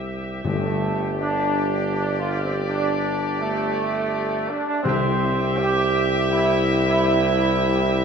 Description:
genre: classical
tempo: 82 BPM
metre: 3/4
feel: straight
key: C major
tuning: A4 = 440 Hz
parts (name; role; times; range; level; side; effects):
- warm trumpet section; melody; 0.0-8.0 s; G4 to E5; -28 LUFS; equal; none
- dark trombone section; sustained chords; 0.0-8.0 s; A3 to G4; -23 LUFS; right 2 dB; none
- mellow French horn section; sustained chords; 0.0-8.0 s; G4; -30 LUFS; left 3 dB; none
- warm tuba; bass; 0.0-8.0 s; G1 to C2; -25 LUFS; right 1 dB; none
- timpani; percussion; 0.4-5.9 s; G2 to C3; -28 LUFS; left 1 dB; none
room: wet concert hall reverb, RT60 2.0 s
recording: minimal, uncompressed stereo recording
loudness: -19 LUFS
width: side -6 dB against mid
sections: 0.0-8.0 A section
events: none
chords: 0.4 Gsus2; 4.8 C

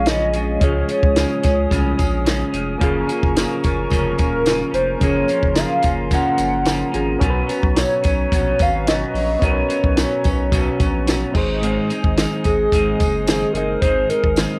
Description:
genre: indie pop, bedroom pop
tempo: 109 BPM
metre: 4/4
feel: straight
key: Db major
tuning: A4 = 444 Hz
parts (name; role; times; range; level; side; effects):
- warbly nostalgic lead; melody; 0.0-14.6 s; Ab4 to Gb5; -24 LUFS; equal; analog chorus, tape echo
- reed electric piano; accompaniment; 0.0-14.6 s; F3 to Eb5; -30 LUFS; equal; cassette tape
- semi-hollow electric guitar; accompaniment; 0.0-14.6 s; Gb2 to Eb4; -26 LUFS; equal; subtle chorus, vibrato effect
- hollow soft pad; sustained chords; 0.0-14.6 s; Ab4 to Eb6; -32 LUFS; equal; chorus
- saturated sub bass; bass; 0.0-14.5 s; Eb1 to Db2; -25 LUFS; equal; tube saturation
- compact cocktail drum kit; drums; 0.1-14.5 s; crash cymbal, hi-hat, kick drum, snare drum; -23 LUFS; equal; none
- tambourine; percussion; 0.1-14.5 s; none; -40 LUFS; equal; none
room: light reverb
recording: none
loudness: -18 LUFS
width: mono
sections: 0.0-14.6 A section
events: none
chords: 0.0 Db; 2.8 Gbmaj7; 7.2 Cbsus2; 11.3 Ab

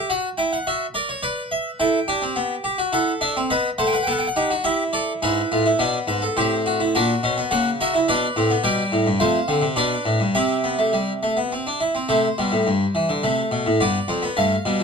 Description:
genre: classical, baroque-style 4-part fugue for harpsichord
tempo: 105 BPM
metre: 3/4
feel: straight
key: E minor, C major from 8.6 s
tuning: A4 = 439 Hz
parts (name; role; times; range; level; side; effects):
- harpsichord; solo; 0.0-14.8 s; F2 to G5; -19 LUFS; equal; none
room: light reverb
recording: dark, warm production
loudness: -19 LUFS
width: side -5 dB against mid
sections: 0.0-5.2 A section; 5.2-12.1 B section; 12.1-14.8 C section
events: none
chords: 0.1 F#7; 1.2 Bm; 1.8 Em; 2.9 F#m7b5/E; 3.5 B7; 4.6 Em; 5.2 E7/G#; 6.4 Am; 6.9 F#7/A#; 8.1 Bm; 8.6 G/B; 9.2 F; 9.8 G/B; 10.3 C; 13.2 Amadd9; 13.8 G7

